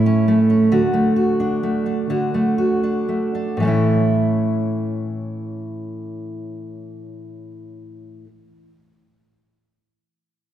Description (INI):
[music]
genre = pop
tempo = 38-46 BPM (dotted quarters)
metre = 6/8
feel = straight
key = A major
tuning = A4 = 440 Hz
[part]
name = fingerpicked steel-string acoustic guitar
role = accompaniment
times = 0.0-8.3 s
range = A2 to F#4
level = -18 LUFS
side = right 1 dB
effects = none
[sound]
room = wet concert hall reverb, RT60 2.1 s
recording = recorded in a church or concert hall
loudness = -17 LUFS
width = side -11 dB against mid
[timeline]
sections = 0.0-3.6 A section; 3.6-6.8 B section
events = slowing down 0.0-3.6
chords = 0.0 A; 0.7 D; 3.6 A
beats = | 0.72 2.10 | 3.61 5.19